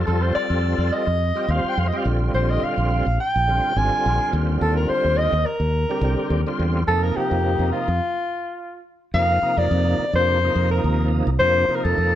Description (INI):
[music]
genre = jazz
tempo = 106 BPM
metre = 4/4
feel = swing 54% on 16ths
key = F mixolydian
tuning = A4 = 440 Hz
[part]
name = overdriven tonewheel organ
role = accompaniment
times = 0.0-12.2 s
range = C3 to C5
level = -26 LUFS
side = right 1 dB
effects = slow rotary speaker, chorus vibrato
[part]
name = modern bright fingered electric bass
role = bass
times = 0.0-12.2 s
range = Ab1 to F2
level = -22 LUFS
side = equal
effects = none
[part]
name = mellow soprano saxophone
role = melody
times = 0.1-12.2 s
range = F4 to Ab5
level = -22 LUFS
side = left 1 dB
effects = none
[sound]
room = light reverb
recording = none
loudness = -18 LUFS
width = side -12 dB against mid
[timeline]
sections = 0.0-9.1 A section; 9.1-12.2 B section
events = stop 8.0-9.1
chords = 0.1 F9; 2.1 Bb13; 4.3 Eb6; 6.9 F9sus4; 9.1 F7sus4